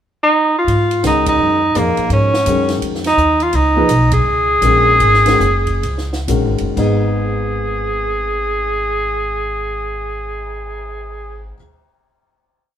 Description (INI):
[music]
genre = modal jazz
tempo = 118-169 BPM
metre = 4/4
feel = swing 63% on 8ths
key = G# dorian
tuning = A4 = 438 Hz
[part]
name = warm tenor saxophone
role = melody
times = 0.2-11.5 s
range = A#3 to G#4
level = -15 LUFS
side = right 1 dB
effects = none
[part]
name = upright bass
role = bass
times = 0.7-11.5 s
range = F#1 to G#2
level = -19 LUFS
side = equal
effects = none
[part]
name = compact cocktail drum kit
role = drums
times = 0.7-10.7 s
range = crash cymbal, cymbal swell, hi-hat, kick drum, ride cymbal, snare drum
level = -27 LUFS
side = right 2 dB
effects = none
[part]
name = warm grand piano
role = accompaniment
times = 1.0-11.6 s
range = G#2 to D#5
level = -20 LUFS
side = left 4 dB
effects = none
[sound]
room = moderate studio reverb, RT60 0.8 s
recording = band playing live in one room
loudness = -13 LUFS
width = side -9 dB against mid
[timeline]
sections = 0.0-0.7 pickup bar; 0.7-6.8 A section; 6.8-10.8 final chord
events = band accent 1.2, 4.1; slowing down 3.5-6.8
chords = 0.0 N.C.; 0.7 G#13sus4; 6.8 G#m